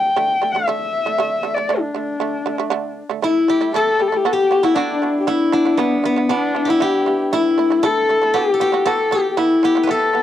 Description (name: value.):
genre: mongolian traditional, Mongolian folk.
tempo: 117 BPM.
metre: 4/4.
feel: straight.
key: D zhi mode.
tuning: A4 = 439 Hz.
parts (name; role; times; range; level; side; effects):
dark horsehead fiddle; melody; 0.0-10.2 s; B3 to G5; -17 LUFS; left 3 dB; cassette tape.
shamisen; arpeggios; 0.0-10.2 s; D3 to F#4; -24 LUFS; right 10 dB; cassette tape.
steel-string zither; second line; 3.2-10.2 s; B3 to B4; -21 LUFS; equal; cassette tape.
room: light reverb.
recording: home recording on cassette.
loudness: -15 LUFS.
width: side -11 dB against mid.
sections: 0.0-3.2 A section; 3.2-10.2 B section.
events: none.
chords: 0.0 D5; 3.2 A5; 4.3 B5; 5.3 E5; 7.3 A5; 8.3 B5; 9.4 E5.